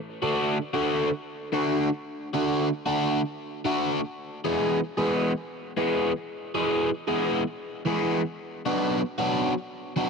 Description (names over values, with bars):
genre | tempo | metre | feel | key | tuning
rock | 114 BPM | 4/4 | straight | D lydian | A4 = 442 Hz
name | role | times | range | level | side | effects
crunchy overdriven guitar | solo | 0.2-10.1 s | D3 to G#4 | -24 LUFS | equal | phaser, tape echo
room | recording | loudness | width
little or no reverb | dry, close 1970s-style studio recording | -24 LUFS | side -5 dB against mid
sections
0.0-10.1 A section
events
none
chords
0.0 D; 4.2 E; 8.4 Bm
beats
0.49 1.01 1.54 | 2.07 2.59 3.12 3.65 | 4.17 4.70 5.23 5.76 | 6.28 6.81 7.34 7.87 | 8.39 8.92 9.45 9.97